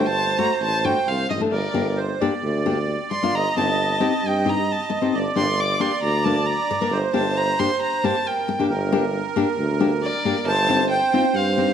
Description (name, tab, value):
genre	klezmer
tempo	134 BPM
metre	4/4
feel	straight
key	G minor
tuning	A4 = 441 Hz
part	warm violin	melody	0.0-11.7 s	D5 to D6	-23 LUFS	equal	none
part	accordion	second line	0.0-11.7 s	Bb4 to Eb5	-26 LUFS	right 6 dB	light tremolo tuning
part	nylon-string guitar	accompaniment	0.0-11.7 s	A3 to Bb4	-24 LUFS	left 4 dB	none
part	warm tuba	bass	0.0-11.7 s	G1 to G2	-26 LUFS	equal	none
room	moderate recital hall reverb, RT60 1.6 s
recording	none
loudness	-19 LUFS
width	side -8 dB against mid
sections	0.0-8.7 A section; 8.7-11.7 B section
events	speeding up 0.0-11.7; violin solo 0.0-8.7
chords	0.0 D/G; 1.5 Gm; 3.3 Cm/G; 5.1 Gm; 10.5 Cm/G